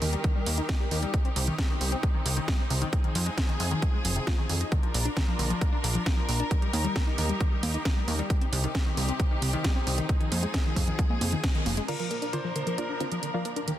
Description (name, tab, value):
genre	uplifting trance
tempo	134 BPM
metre	4/4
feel	straight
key	unclear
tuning	A4 = 442 Hz
part	rich symphonic string section	sustained chords	0.0-13.8 s	Eb2 to Bb4	-34 LUFS	equal	sidechain pumping
part	tight sequenced synth	arpeggios	0.0-13.7 s	C3 to F4	-34 LUFS	left 2 dB	chorus, cassette tape, sidechain pumping, dub echo
part	plucky analog bass	bass	0.0-11.8 s	F1 to F2	-28 LUFS	equal	sidechain pumping
part	house drum kit	drums	0.0-13.8 s	congas, crash cymbal, hi-hat, snare drum	-33 LUFS	right 2 dB	overdrive
part	electronic kick drum	drums	0.2-11.5 s	none	-26 LUFS	equal	overdrive
part	wide unison pluck	melody	11.9-13.8 s	C4 to F5	-35 LUFS	right 1 dB	sidechain pumping, dub echo
part	clear grand piano	second line	11.9-13.8 s	Bb4 to C5	-37 LUFS	right 1 dB	dub echo
part	plucky unison lead	second line	11.9-13.8 s	Bb4 to F5	-40 LUFS	right 1 dB	none
room	light reverb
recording	dense, heavily limited modern master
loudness	-25 LUFS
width	side -12 dB against mid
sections	0.0-11.9 A section; 11.9-13.8 B section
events	band accent 11.4; filter sweep on synth arpeggio sound 11.9-13.8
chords	0.0 Eb; 1.1 Cm; 2.9 Fm7; 4.7 Bb; 6.5 Eb; 8.3 Cm; 10.1 Fm7; 11.9 Bb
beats	0.24 0.69 | 1.14 1.58 2.03 2.48 | 2.93 3.38 3.82 4.27 | 4.72 5.17 5.62 6.06 | 6.51 6.96 7.41 7.85 | 8.30 8.75 9.20 9.64 | 10.09 10.54 10.99 11.44 | 11.88 12.33 12.78 13.23 | 13.67